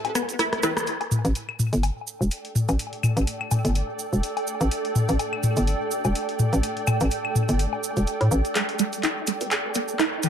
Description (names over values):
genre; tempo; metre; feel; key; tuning
minimal techno; 125 BPM; 4/4; swing 56% on 16ths; unclear; A4 = 436 Hz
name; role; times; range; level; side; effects
punchy analog drum machine; drums; 0.0-10.3 s; handclaps, hi-hat, rim click; -28 LUFS; equal; analog delay
electronic woodblock, toms and claves; percussion; 0.0-7.8 s; none; -25 LUFS; left 2 dB; analog delay
resonant blip pluck; riff; 0.2-0.7, 8.6-10.3 s; E3 to A4; -26 LUFS; right 2 dB; phaser, wide subtle chorus, analog delay
cabasa; percussion; 0.2-10.3 s; none; -34 LUFS; right 8 dB; none
filtered dub chord stab; stabs; 0.6-0.7, 9.4-9.5 s; C4 to B4; -33 LUFS; right 2 dB; phaser, ensemble chorus, analog delay
granular cloud pad; texture; 2.2-10.3 s; A4 to G5; -29 LUFS; right 2 dB; built-in reverb
hollow knocking FM bass; bass; 1.2-8.4 s; E1 to A2; -21 LUFS; equal; none
room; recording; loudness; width
moderate spring reverb, RT60 1.6 s, digital ambience; echo-heavy mix; -22 LUFS; side -8 dB against mid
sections
0.9-8.6 A section; 8.6-10.3 B section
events
break 0.0-0.9; drum fill 0.2-0.9, 8.6-10.3; band accent 0.8; build-up 8.6-10.3; filter sweep on synth arpeggio sound 8.6-10.3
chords
0.0 Am7 (rootless); 0.9 A5; 8.6 A7(no3)